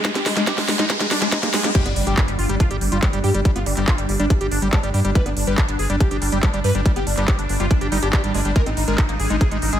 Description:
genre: psychedelic trance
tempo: 141 BPM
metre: 4/4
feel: straight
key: unclear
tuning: A4 = 440 Hz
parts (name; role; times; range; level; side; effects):
- wide unison lead; melody; 0.0-9.8 s; G3 to B4; -26 LUFS; equal; phaser, sidechain pumping, digital delay
- swarming drone; sustained chords; 0.0-9.8 s; G3 to D4; -29 LUFS; right 1 dB; built-in reverb, sidechain pumping
- overdriven acid bass; riff; 0.0-9.8 s; G3 to G4; -26 LUFS; left 1 dB; auto-pan, sidechain pumping, tape echo
- electronic kick drum; drums; 0.0-9.5 s; none; -17 LUFS; equal; high-pass filter on kick, studio reverb
- techno drum kit; drums; 0.0-9.8 s; crash cymbal, handclaps, hi-hat, snare drum; -25 LUFS; equal; studio reverb
- riser and impact; sound effects; 0.0-3.5 s; none; -27 LUFS; equal; none
- resonant blip pluck; second line; 0.4-9.3 s; G3 to D4; -37 LUFS; right 3 dB; none
- round analog bass; bass; 1.9-9.8 s; G1 to G2; -22 LUFS; equal; none
room: light reverb, digital ambience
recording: none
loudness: -17 LUFS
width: side -10 dB against mid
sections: 0.0-1.7 A section; 1.7-9.8 B section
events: build-up 0.0-1.7; drum fill 0.0-1.7; riser 0.0-1.7; drop 1.7-9.8; impact 1.7-3.5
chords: 0.0 Ab5; 1.7 G5; 8.6 Ab5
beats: | 0.05 0.47 0.90 1.32 | 1.75 2.17 2.60 3.03 | 3.45 3.88 4.30 4.73 | 5.15 5.58 6.00 6.43 | 6.86 7.28 7.71 8.13 | 8.56 8.98 9.41

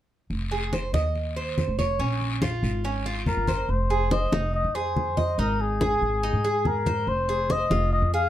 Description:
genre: latin, Cuban son and guajira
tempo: 142 BPM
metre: 4/4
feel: straight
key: F minor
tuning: A4 = 439 Hz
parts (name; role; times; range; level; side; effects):
- upright bass; bass; 0.3-8.3 s; F1 to Ab2; -27 LUFS; equal; none
- congas; percussion; 0.3-8.3 s; none; -29 LUFS; left 1 dB; none
- guiro; percussion; 0.3-3.7 s; none; -38 LUFS; left 5 dB; none
- Cuban tres; arpeggios; 0.5-8.3 s; Db4 to Eb5; -29 LUFS; right 3 dB; none
- trumpet with cup mute; melody; 3.3-8.3 s; Ab4 to F5; -26 LUFS; left 4 dB; none
room: light reverb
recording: dark, warm production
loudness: -23 LUFS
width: side -12 dB against mid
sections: 0.3-3.7 A section; 3.7-8.3 B section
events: none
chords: 0.3 Fm7; 2.0 Bbm7; 3.7 Fm7; 5.4 Ab; 7.1 Fm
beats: | 0.30 0.73 1.15 1.58 | 2.00 2.42 2.85 3.27 | 3.69 4.12 4.54 4.96 | 5.38 5.81 6.23 6.65 | 7.08 7.50 7.92

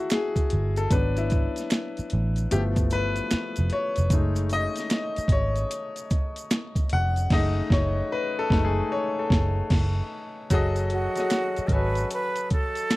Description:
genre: R&B, neo-soul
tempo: 75 BPM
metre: 4/4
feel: swing 64% on 16ths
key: F# dorian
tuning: A4 = 441 Hz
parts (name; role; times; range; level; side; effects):
- clear baby grand piano; accompaniment; 0.0-13.0 s; F3 to G#5; -27 LUFS; left 2 dB; none
- boom bap sampler-style drum kit; drums; 0.1-13.0 s; crash cymbal, hi-hat, kick drum, snare drum; -25 LUFS; equal; none
- finger snaps and maracas; percussion; 0.1-13.0 s; none; -38 LUFS; right 4 dB; none
- vintage muted picked electric bass; bass; 0.5-12.0 s; F1 to A1; -25 LUFS; right 1 dB; none
- breathy bright concert flute; melody; 10.9-13.0 s; F#4 to B4; -28 LUFS; right 2 dB; none
room: small room ambience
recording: dry, close 1970s-style studio recording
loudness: -22 LUFS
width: side -19 dB against mid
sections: 0.0-10.5 A section; 10.5-13.0 B section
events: grand piano solo 0.0-10.5; band accent 7.3-10.5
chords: 0.0 F#m69; 0.9 G#m7b5; 2.5 G13; 4.1 F#m69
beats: 0.10 | 0.90 1.70 2.50 3.30 | 4.10 4.90 5.70 6.50 | 7.30 8.10 8.90 9.70 | 10.50 11.30 12.10 12.90

